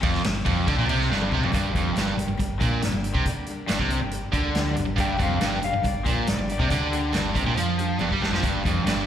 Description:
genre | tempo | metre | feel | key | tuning
classic rock | 139 BPM | 4/4 | straight | G minor | A4 = 439 Hz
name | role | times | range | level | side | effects
biting overdriven guitar | riff | 0.0-9.1 s | F2 to G3 | -27 LUFS | right 8 dB | none
cranked stack guitar | riff | 0.0-9.1 s | F2 to G3 | -29 LUFS | left 8 dB | overdrive
hollow-body short-scale fingered electric bass | bass | 0.0-9.1 s | F1 to G2 | -28 LUFS | equal | none
vintage drum kit | drums | 0.0-9.0 s | hi-hat, kick drum, ride cymbal, snare drum, toms | -28 LUFS | equal | none
picked steel-string acoustic guitar | accompaniment | 1.5-9.1 s | G2 to G4 | -34 LUFS | left 2 dB | slapback echo
electric slide guitar | second line | 5.0-6.7 s | C5 to G5 | -29 LUFS | left 4 dB | slapback echo
room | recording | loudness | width
light reverb, studio reverb | live gig heard through the venue's PA, club reverb | -22 LUFS | side -10 dB against mid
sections
0.0-1.5 A section; 1.5-9.1 B section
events
drum fill 1.1-1.5, 8.0-8.4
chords
0.0 Gm

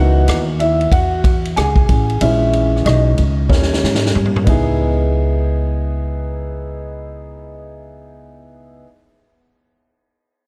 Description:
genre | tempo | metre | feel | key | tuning
hip hop, jazz-hop | 93 BPM | 4/4 | swing 64% on 16ths | C# dorian | A4 = 440 Hz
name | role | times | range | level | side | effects
warm upright piano | accompaniment | 0.0-8.8 s | E3 to G#5 | -22 LUFS | equal | subtle chorus
upright bass | bass | 0.0-8.8 s | A1 to G#2 | -20 LUFS | equal | none
vintage drum kit | drums | 0.3-4.7 s | hi-hat, kick drum, ride cymbal, rim click, snare drum, toms | -20 LUFS | equal | none
room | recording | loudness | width
moderate plate reverb, RT60 3.0 s | dreamy mix soaked in reverb | -16 LUFS | mono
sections
0.0-4.8 A section; 4.8-7.4 B section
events
upright piano solo 0.0-4.8; drum fill 3.5-4.8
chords
0.0 C#m9; 2.2 A#m7b5; 3.5 D#7; 4.5 C#m9

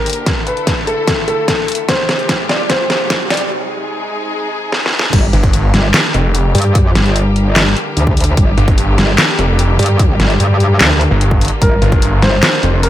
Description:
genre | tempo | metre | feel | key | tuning
heavy wobble dubstep | 148 BPM | 4/4 | half-time | G phrygian | A4 = 444 Hz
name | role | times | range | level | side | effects
dark grand piano | melody | 0.0-3.5, 11.6-12.9 s | A4 to D5 | -18 LUFS | equal | low-pass filter, digital delay
rich studio string section | sustained chords | 0.0-12.9 s | C3 to Bb4 | -22 LUFS | left 1 dB | sidechain pumping
riser | sound effects | 0.6-3.5 s | none | -26 LUFS | right 1 dB | none
dubstep drum kit | drums | 0.1-12.9 s | crash cymbal, handclaps, hi-hat, snare drum | -15 LUFS | equal | none
electronic kick drum | drums | 0.3-12.0 s | none | -15 LUFS | equal | none
metallic wobble bass | bass | 5.1-12.4 s | G1 to G2 | -12 LUFS | equal | chorus, overdrive
snarling distorted saw bass | bass | 5.3-12.9 s | F1 to G1 | -12 LUFS | equal | overdrive
room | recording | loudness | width
light reverb, digital ambience | high-pass filter | -11 LUFS | side -12 dB against mid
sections
0.0-5.1 A section; 5.1-12.9 B section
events
build-up 0.0-5.1; drum fill 0.0-3.5, 4.7-5.1; filter sweep 0.0-5.1; break 3.5-5.1; drop 5.1-12.9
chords
0.3 Dsus2; 1.9 Fmadd9; 3.5 Ab; 5.1 Gm

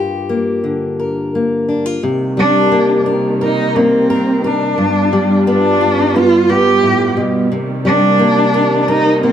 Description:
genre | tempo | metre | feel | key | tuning
acoustic folk-pop ballad | 87 BPM | 4/4 | straight | unclear | A4 = 440 Hz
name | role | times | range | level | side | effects
fingerpicked steel-string acoustic guitar | accompaniment | 0.0-9.3 s | G2 to Bb4 | -15 LUFS | left 1 dB | none
dark chamber string section | sustained chords | 2.0-9.3 s | G2 to F4 | -20 LUFS | right 2 dB | none
warm cello | melody | 2.4-9.3 s | C4 to G4 | -14 LUFS | right 1 dB | slapback echo
room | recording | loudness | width
light reverb | none | -11 LUFS | side -9 dB against mid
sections
0.0-2.0 A section; 2.0-9.3 B section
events
none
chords
0.0 Gm7; 2.0 Cm7; 4.8 G7; 7.5 Cm7

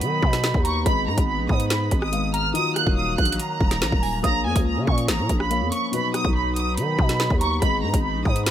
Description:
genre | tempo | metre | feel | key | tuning
hip hop, drill | 142 BPM | 4/4 | half-time | unclear | A4 = 441 Hz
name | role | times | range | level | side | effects
warm studio violin section | melody | 0.0-8.5 s | Ab5 to Gb6 | -26 LUFS | right 2 dB | tape echo
dark baby grand piano | accompaniment | 0.0-8.5 s | B2 to F5 | -30 LUFS | left 5 dB | none
warm analog pad | sustained chords | 0.0-8.5 s | Eb3 to F5 | -32 LUFS | equal | chorus
growling 808-style bass | bass | 0.0-8.5 s | Eb1 to D#3 | -25 LUFS | equal | none
drill drum kit | drums | 0.0-8.5 s | hi-hat, kick drum, rim click, snare drum | -23 LUFS | equal | none
soft synth bell | second line | 0.4-8.5 s | Ab5 to Eb6 | -33 LUFS | right 2 dB | chorus, tape echo
room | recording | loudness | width
digital ambience | echo-heavy mix | -20 LUFS | side -11 dB against mid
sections
0.0-8.5 A section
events
none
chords
0.0 B; 0.9 Abm; 2.5 Ebmadd9; 4.2 Bbm; 5.9 B; 7.6 Abm

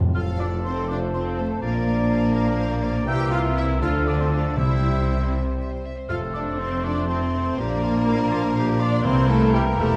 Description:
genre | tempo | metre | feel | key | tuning
quick classical-period movement for symphony orchestra | 81 BPM (dotted quarters) | 6/8 | rubato | F major | A4 = 440 Hz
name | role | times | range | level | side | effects
timpani | percussion | 0.0-0.1, 4.6-6.8, 9.1-9.7 s | F2 to C3 | -29 LUFS | equal | none
clear studio violin section | melody | 0.1-10.0 s | F4 to F5 | -42 LUFS | equal | none
mellow hollow silver concert flute | second line | 0.1-10.0 s | G5 to G6 | -34 LUFS | equal | none
rich studio double bass section | bass | 0.1-10.0 s | E1 to D2 | -29 LUFS | equal | none
clear clarinet | second line | 0.2-10.0 s | E4 to E5 | -35 LUFS | equal | none
clear studio violin section | second line | 0.2-10.0 s | G4 to G5 | -39 LUFS | equal | none
dark cor anglais | second line | 0.2-10.0 s | A4 to D5 | -36 LUFS | equal | none
clear studio viola section | accompaniment | 0.2-9.9 s | G3 to G4 | -29 LUFS | equal | none
warm bassoon | accompaniment | 0.2-10.0 s | E3 to A3 | -36 LUFS | equal | none
mellow French horn section | sustained chords | 0.2-10.0 s | G3 to F4 | -33 LUFS | equal | none
rich studio cello section | bass | 0.2-10.0 s | E2 to D3 | -30 LUFS | equal | none
room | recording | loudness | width
wet scoring stage reverb, RT60 1.4 s | vinyl crackle | -22 LUFS | mono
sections
0.2-10.0 A section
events
timpani fill 0.0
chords
0.2 F; 1.6 Bb; 3.1 C7; 3.8 Dm; 4.6 C; 6.1 F; 7.6 Bb; 9.0 C7

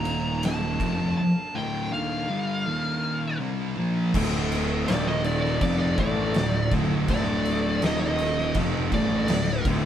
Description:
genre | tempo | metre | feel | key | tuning
stoner and doom metal | 81 BPM | 4/4 | straight | D minor | A4 = 440 Hz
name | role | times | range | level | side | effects
fuzz lead guitar | melody | 0.0-9.6 s | D5 to Bb5 | -30 LUFS | equal | distortion
bowed-like drone | sustained chords | 0.0-9.9 s | D4 to F5 | -40 LUFS | right 1 dB | none
thick fuzz guitar | riff | 0.0-9.9 s | D2 to C4 | -28 LUFS | left 4 dB | distortion
thick fuzz guitar | riff | 0.0-9.9 s | D2 to C4 | -29 LUFS | right 5 dB | distortion
fuzz picked electric bass | bass | 0.0-9.9 s | D1 to A1 | -31 LUFS | equal | overdrive, tube saturation
oversized low-tuned drum kit | drums | 0.1-9.8 s | crash cymbal, kick drum, ride cymbal, snare drum | -28 LUFS | equal | none
fuzz guitar | riff | 4.1-9.9 s | D2 to A3 | -33 LUFS | equal | distortion
room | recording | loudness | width
moderate studio reverb, RT60 0.6 s | band playing live in one room | -22 LUFS | side -10 dB against mid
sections
0.0-4.1 A section; 4.1-9.9 B section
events
lead electric guitar solo 4.1-9.9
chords
0.0 Eb5; 0.8 Dm; 2.7 Eb5; 3.4 Dm; 4.1 D5; 4.9 Eb5; 5.6 Dm; 7.8 Eb5; 8.6 Dm

